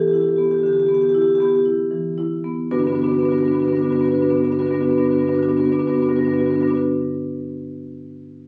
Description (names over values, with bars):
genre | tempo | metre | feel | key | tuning
classical, contemporary piece for solo marimba | 55-62 BPM | 4/4 | straight | G major | A4 = 440 Hz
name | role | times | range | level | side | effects
marimba with medium mallets | solo | 0.0-6.8 s | G2 to B4 | -19 LUFS | equal | none
room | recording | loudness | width
moderate stone room reverb, RT60 1.2 s | recorded on a phone in the room, club reverb | -19 LUFS | mono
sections
0.0-2.7 A section; 2.7-7.1 B section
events
slowing down 0.0-2.7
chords
0.0 G6; 2.7 Gmaj7